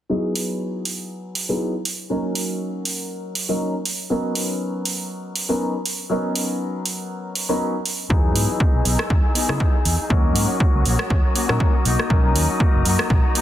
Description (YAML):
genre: filtered disco house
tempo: 120 BPM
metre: 4/4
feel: swing 55% on 16ths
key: B major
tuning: A4 = 440 Hz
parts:
  - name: clear concert grand piano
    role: accompaniment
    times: 0.1-13.4 s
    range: E3 to A#4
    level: -25 LUFS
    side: left 1 dB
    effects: phaser, sidechain pumping, low-pass filter
  - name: punchy analog drum machine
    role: drums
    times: 0.4-13.4 s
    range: hi-hat, rim click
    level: -25 LUFS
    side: right 2 dB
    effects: sidechain pumping on hats, soft clipping on snare
  - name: dark symphonic violin section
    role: sustained chords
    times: 8.1-13.4 s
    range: D#4 to E6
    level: -31 LUFS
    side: left 1 dB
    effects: sidechain pumping, low-pass filter
  - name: mellow electric guitar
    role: riff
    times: 8.1-13.4 s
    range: A#3 to G#4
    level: -26 LUFS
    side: left 4 dB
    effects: sidechain pumping, low-pass filter
  - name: fingered electric bass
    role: bass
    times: 8.1-13.2 s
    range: F#1 to C#3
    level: -22 LUFS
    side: equal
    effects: tube saturation, sidechain pumping, low-pass filter
  - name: electronic kick drum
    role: drums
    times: 8.1-13.2 s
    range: none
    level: -18 LUFS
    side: equal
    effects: none
room: light reverb, digital ambience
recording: dense, heavily limited modern master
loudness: -19 LUFS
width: side -12 dB against mid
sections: 0.1-13.4 A section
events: filter sweep 0.1-13.4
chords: 0.1 Emaj7; 2.1 D#m7; 3.9 Bmaj7; 8.1 Emaj7; 10.1 D#m7; 11.9 Bmaj7